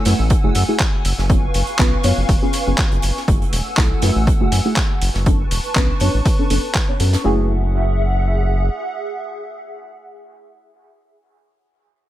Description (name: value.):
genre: deep house.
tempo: 121 BPM.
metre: 4/4.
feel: swing 54% on 16ths.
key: F# minor.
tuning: A4 = 439 Hz.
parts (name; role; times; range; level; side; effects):
hollow soft pad; sustained chords; 0.0-10.9 s; A3 to E6; -26 LUFS; equal; ensemble chorus, sidechain pumping.
deep mellow chord stab; stabs; 0.0-10.9 s; A3 to C#5; -23 LUFS; equal; lush chorus, sidechain pumping, dub echo.
round analog bass; bass; 0.1-8.7 s; E1 to F#2; -18 LUFS; equal; sidechain pumping.
dusty soul sampler-style drum kit; drums; 0.1-7.1 s; handclaps, hi-hat; -24 LUFS; equal; none.
loose indie drum kit; drums; 0.1-7.2 s; hi-hat, snare drum; -31 LUFS; right 4 dB; sidechain pumping on hats, high-pass filter on hats, high-pass filter on snare, high-pass filter on room.
electronic kick drum; drums; 0.3-6.9 s; none; -18 LUFS; equal; overdrive.
room: little or no reverb.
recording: none.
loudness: -15 LUFS.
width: side -14 dB against mid.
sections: 0.0-7.2 A section; 7.2-11.2 B section.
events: none.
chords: 0.0 F#m9; 1.0 C#7/F#; 3.3 F#m9; 5.0 Bm9; 7.2 F#m9.